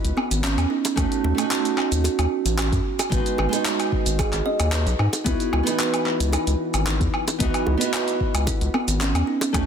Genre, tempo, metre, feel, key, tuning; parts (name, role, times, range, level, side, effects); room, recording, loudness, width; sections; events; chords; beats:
sunset chillout; 112 BPM; 4/4; straight; C# minor; A4 = 440 Hz
nylon-string guitar; accompaniment; 0.0-9.7 s; E3 to D#5; -26 LUFS; moving between left 3 dB and right 8 dB; auto-pan, digital delay
kalimba; arpeggios; 0.0-9.7 s; B3 to D#5; -27 LUFS; right 3 dB; digital delay
round analog bass; bass; 0.0-9.6 s; G#1 to G#2; -22 LUFS; equal
deep house drum kit; drums; 0.0-9.7 s; handclaps, hi-hat, shaker, woodblock; -26 LUFS; equal
bongos; percussion; 0.9-9.5 s; -32 LUFS; right 2 dB
electronic kick drum; drums; 1.0-9.7 s; -26 LUFS; equal
moderate lush hall reverb, RT60 1.6 s, digital ambience; dense, heavily limited modern master; -20 LUFS; side -7 dB against mid
0.0-9.7 A section
0.0 C#m11; 1.0 D#m7b5; 2.9 G#m7; 5.3 C#m11
0.44 | 0.97 1.51 2.05 2.58 | 3.12 3.65 4.19 4.72 | 5.26 5.80 6.33 6.87 | 7.40 7.94 8.47 9.01 | 9.55